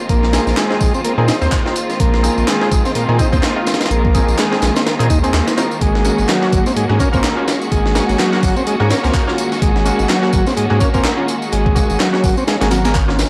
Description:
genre	breakbeat, breaks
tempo	126 BPM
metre	4/4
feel	swing 58% on 16ths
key	unclear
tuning	A4 = 441 Hz
part	rich studio string section	sustained chords	0.0-13.3 s	Eb3 to Gb4	-24 LUFS	equal	sidechain pumping
part	combo organ	riff	0.1-12.9 s	Gb3 to Eb4	-22 LUFS	equal	tape echo
part	saturated sub bass	bass	0.1-13.2 s	Ab1 to Bb2	-20 LUFS	equal	none
part	breakbeat sampler-style drum kit	drums	0.1-13.3 s	hi-hat, kick drum, snare drum	-20 LUFS	equal	small room ambience
part	electronic tambourine and handclaps	drums	0.1-13.3 s	none	-29 LUFS	equal	small room ambience
part	orchestra-hit-like synth stab	stabs	0.3-13.3 s	Bb3 to C5	-25 LUFS	equal	built-in reverb, tape echo
room	light reverb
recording	dry, gritty hardware recording, vinyl crackle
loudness	-15 LUFS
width	mono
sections	0.0-13.3 A section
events	none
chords	0.0 Bb9sus4; 5.8 Ab9sus4

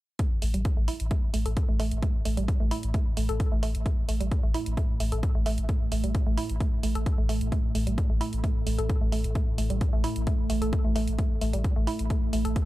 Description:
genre	driving peak-time techno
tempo	131 BPM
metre	4/4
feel	straight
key	unclear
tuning	A4 = 438 Hz
part	woody wave-folded pluck	riff	0.2-12.6 s	G3 to A4	-34 LUFS	right 2 dB	chorus, sidechain pumping, digital delay
part	deep dark ambient pad	drone	2.6-12.7 s	A2 to A3	-35 LUFS	right 2 dB	chorus, built-in reverb, sidechain pumping
part	electronic hi-hat	drums	0.2-12.7 s	none	-39 LUFS	right 2 dB	none
part	electronic kick drum	drums	0.2-12.7 s	none	-26 LUFS	equal	none
part	warm sub bass	bass	0.4-12.6 s	A1	-28 LUFS	equal	overdrive, sidechain pumping, low-pass filter
room	digital ambience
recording	dark, warm production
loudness	-24 LUFS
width	side -16 dB against mid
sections	0.2-12.7 A section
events	none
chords	none

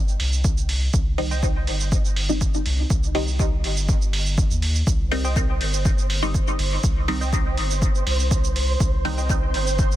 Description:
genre	dub techno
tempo	122 BPM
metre	4/4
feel	straight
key	C minor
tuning	A4 = 440 Hz
part	soft dub sub bass	bass	0.0-10.0 s	G1 to Eb2	-24 LUFS	equal	sidechain pumping
part	electronic shaker and hi-hat	drums	0.1-10.0 s	none	-29 LUFS	right 4 dB	overdrive
part	electronic kick drum	drums	0.4-9.9 s	none	-22 LUFS	equal	none
part	filtered dub chord stab	stabs	1.2-9.2 s	Eb3 to Eb4	-29 LUFS	left 1 dB	phaser, sidechain pumping, dub echo
part	filtered dub chord stab	riff	1.3-1.4, 5.2-9.3 s	C5 to G5	-36 LUFS	right 1 dB	lush chorus, sidechain pumping, dub echo
part	flickering grainy texture	texture	5.5-10.0 s	C5	-30 LUFS	right 3 dB	built-in reverb, sidechain pumping
room	little or no reverb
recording	dense, heavily limited modern master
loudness	-19 LUFS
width	side -13 dB against mid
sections	0.0-10.0 A section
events	none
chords	0.0 Cm

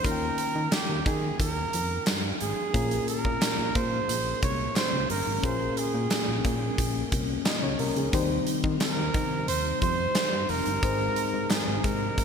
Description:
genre	1980s-style pop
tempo	89 BPM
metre	4/4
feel	straight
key	unclear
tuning	A4 = 436 Hz
part	warm flugelhorn	melody	0.0-12.2 s	G4 to Db5	-30 LUFS	right 4 dB	ping-pong delay
part	FM electric piano	accompaniment	0.0-12.2 s	Ab2 to G5	-33 LUFS	left 4 dB	chorus
part	solid FM bass	bass	0.0-12.2 s	F1 to Eb3	-32 LUFS	equal	none
part	huge arena drum kit	drums	0.0-12.2 s	hi-hat, kick drum, snare drum, tambourine	-28 LUFS	equal	gated reverb
part	group handclap	percussion	0.7-11.7 s	none	barely audible	none	none
part	string machine, cellos	sustained chords	2.7-12.2 s	C3 to G5	-34 LUFS	left 1 dB	phaser, ensemble chorus
room	moderate lush hall reverb, RT60 2.0 s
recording	bright 1980s-style digital production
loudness	-24 LUFS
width	side -6 dB against mid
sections	0.0-12.2 A section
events	none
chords	0.0 Eb7; 2.7 Bbm7; 8.1 Cm; 10.8 Ab

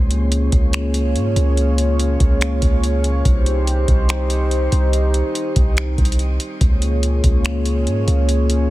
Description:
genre	hip hop, atmospheric cloud-rap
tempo	143 BPM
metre	4/4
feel	half-time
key	Db lydian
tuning	A4 = 440 Hz
part	dark analog pad	sustained chords	0.0-8.7 s	Bb3 to Db5	-22 LUFS	equal	chorus, sidechain pumping
part	warm 808-style bass	bass	0.0-8.7 s	C2 to Ab2	-17 LUFS	equal	none
part	booming analog drum machine	drums	0.1-8.6 s	finger snaps, hi-hat, kick drum	-19 LUFS	equal	soft clipping on snare
room	little or no reverb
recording	dense, heavily limited modern master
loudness	-15 LUFS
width	side -17 dB against mid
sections	0.0-8.7 A section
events	none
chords	0.0 Db6; 3.3 Cm; 6.6 Db6

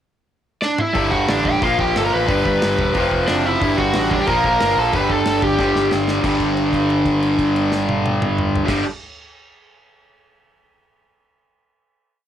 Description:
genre	punk rock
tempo	182 BPM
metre	4/4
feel	straight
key	unclear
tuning	A4 = 441 Hz
part	raw garage guitar	melody	0.6-5.9 s	D4 to B5	-19 LUFS	equal	overdrive
part	big rock drum kit	drums	0.6-8.8 s	crash cymbal, hi-hat, kick drum, snare drum, toms	-26 LUFS	equal	cassette tape
part	distorted electric guitar	riff	0.9-8.8 s	F2 to Bb3	-18 LUFS	equal	overdrive, cassette tape
part	growling picked electric bass	bass	1.0-8.8 s	E1 to Bb1	-25 LUFS	equal	overdrive
room	little or no reverb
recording	home recording on cassette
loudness	-16 LUFS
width	side -10 dB against mid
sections	0.0-1.0 pickup bar; 1.0-6.2 chorus; 6.2-8.9 final chord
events	drum fill 0.6-1.0, 5.6-6.2; held note 6.2-8.7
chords	0.0 Dsus2; 1.0 G5; 1.6 Bb5; 2.3 G; 3.0 F5; 3.6 G5; 4.3 Bb5; 4.9 G; 6.2 G5

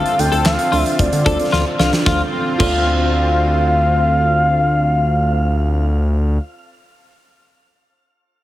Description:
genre	synth-pop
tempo	112 BPM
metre	4/4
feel	straight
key	D minor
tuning	A4 = 441 Hz
part	expressive synth lead	melody	0.0-6.4 s	D5 to G5	-19 LUFS	equal	chorus, analog delay, shimmer reverb
part	twelve-string electric guitar	second line	0.0-3.6 s	F4 to A4	-24 LUFS	left 4 dB	analog chorus, analog delay, shimmer reverb
part	brassy analog pad	sustained chords	0.0-5.8 s	D3 to F4	-24 LUFS	equal	chorus, shimmer reverb
part	smooth synth bass	bass	0.0-6.4 s	C2 to D3	-17 LUFS	equal	none
part	huge arena drum kit	drums	0.1-2.7 s	crash cymbal, handclaps, hi-hat, kick drum, snare drum	-20 LUFS	equal	none
part	muted felt-like synth keys	accompaniment	0.2-6.4 s	D4 to D5	-26 LUFS	right 3 dB	chorus, shimmer reverb
room	light reverb, small room ambience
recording	heavily compressed radio sound, multiband compression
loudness	-14 LUFS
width	side -14 dB against mid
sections	0.0-2.1 A section; 2.1-6.3 B section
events	drum fill 1.5-2.1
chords	0.0 Dm7

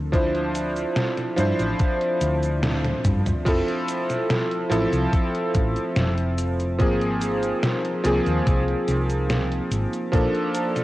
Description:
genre	vaporwave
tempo	72 BPM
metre	4/4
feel	straight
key	F major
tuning	A4 = 442 Hz
part	warbly tape-like pad	sustained chords	0.0-10.8 s	F3 to A4	-33 LUFS	equal	chorus, built-in reverb, vintage 12-bit sampler grit, cassette tape
part	hollow-body short-scale fingered electric bass	bass	0.0-10.3 s	F1 to G2	-25 LUFS	equal	none
part	clear electric grand piano	accompaniment	0.1-10.8 s	F3 to C5	-23 LUFS	equal	analog chorus, cassette tape, tape echo
part	detuned 8-bit digital drum machine	drums	0.1-10.8 s	cabasa, crash cymbal, hi-hat, snare drum, toms	-27 LUFS	equal	cassette tape
part	electronic kick drum	drums	0.1-10.3 s	none	-22 LUFS	equal	cassette tape
room	moderate lush hall reverb, RT60 2.4 s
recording	home recording on cassette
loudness	-20 LUFS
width	side -16 dB against mid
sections	0.0-3.5 A section; 3.5-10.8 B section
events	drum fill 2.6-3.5; band accent 2.6-3.0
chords	0.0 Dm9; 3.5 Fmaj7; 6.8 Ab69; 10.1 Bbmaj7

